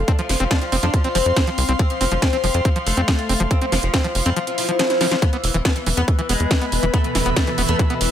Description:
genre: psychedelic trance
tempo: 140 BPM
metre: 4/4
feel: straight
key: unclear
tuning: A4 = 440 Hz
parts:
  - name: tight sequencer bass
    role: bass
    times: 0.0-8.1 s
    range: E1 to F2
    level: -21 LUFS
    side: equal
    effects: tube saturation
  - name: airy breathy pad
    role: texture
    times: 0.0-8.1 s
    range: B4 to C6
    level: -27 LUFS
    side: left 1 dB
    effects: chorus, sidechain pumping
  - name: oud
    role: melody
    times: 0.1-8.1 s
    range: B2 to D4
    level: -24 LUFS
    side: left 2 dB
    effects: phaser, sidechain pumping, ping-pong delay
  - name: overdriven acid bass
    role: riff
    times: 0.1-7.9 s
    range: E3 to C4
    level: -26 LUFS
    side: equal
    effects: auto-pan, sidechain pumping, digital delay
  - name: drum and bass drum kit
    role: drums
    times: 0.1-8.1 s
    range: hi-hat, snare drum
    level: -24 LUFS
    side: right 1 dB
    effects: overdrive
  - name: electronic kick drum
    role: drums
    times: 0.1-7.9 s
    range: none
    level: -19 LUFS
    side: equal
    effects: overdrive
  - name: swell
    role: sound effects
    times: 4.5-5.2 s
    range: none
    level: -30 LUFS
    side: right 1 dB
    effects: none
  - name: evolving wavetable pad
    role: sustained chords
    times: 5.5-8.1 s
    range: E3 to B3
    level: -29 LUFS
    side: right 1 dB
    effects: phaser, built-in reverb, sidechain pumping
room: little or no reverb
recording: none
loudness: -17 LUFS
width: side -10 dB against mid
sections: 0.0-8.1 A section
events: swell 4.5-5.2; drum fill 4.9-5.2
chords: 0.0 F5; 5.2 E5

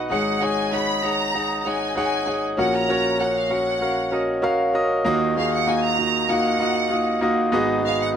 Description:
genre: pop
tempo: 97 BPM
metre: 4/4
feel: straight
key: Eb minor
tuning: A4 = 440 Hz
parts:
  - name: clear concert grand piano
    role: accompaniment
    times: 0.0-8.2 s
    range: Ab1 to F#5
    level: -20 LUFS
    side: equal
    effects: none
  - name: rich studio violin section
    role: melody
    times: 0.1-8.1 s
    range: F5 to Cb6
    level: -25 LUFS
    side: right 1 dB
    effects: none
room: moderate plate reverb, RT60 2.7 s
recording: none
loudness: -19 LUFS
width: side -8 dB against mid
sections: 0.0-5.1 A section; 5.1-8.2 B section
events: none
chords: 0.1 Ab7sus4; 2.6 Gb/Bb; 5.1 Ebmadd9; 7.5 Abm7

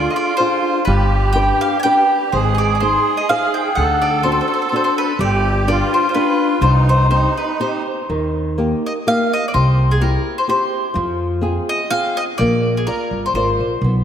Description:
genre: italian folk, Italian serenade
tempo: 125 BPM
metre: 3/4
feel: swing 54% on 8ths, rubato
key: C harmonic minor, Eb major from 8.1 s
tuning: A4 = 440 Hz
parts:
  - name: mandolin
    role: melody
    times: 0.0-13.8 s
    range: Ab4 to Ab5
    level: -19 LUFS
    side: left 1 dB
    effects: tape echo
  - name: musette accordion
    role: second line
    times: 0.0-7.8 s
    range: Eb4 to A4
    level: -20 LUFS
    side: right 4 dB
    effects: tape echo
  - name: flamenco guitar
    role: accompaniment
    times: 0.0-14.0 s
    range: C3 to D5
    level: -21 LUFS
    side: left 2 dB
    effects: wide subtle chorus
  - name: upright bass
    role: bass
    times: 0.0-14.0 s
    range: G1 to F2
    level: -18 LUFS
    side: equal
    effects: none
room: wet lush hall reverb, RT60 2.4 s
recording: dreamy mix soaked in reverb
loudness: -14 LUFS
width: side -9 dB against mid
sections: 0.0-8.1 A section; 8.1-14.0 B section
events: none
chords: 0.0 Ddim; 0.9 G; 2.3 Ab; 3.8 D7; 5.2 G; 6.6 Cm; 8.1 Eb; 9.5 C; 11.0 Fm; 12.4 Bb

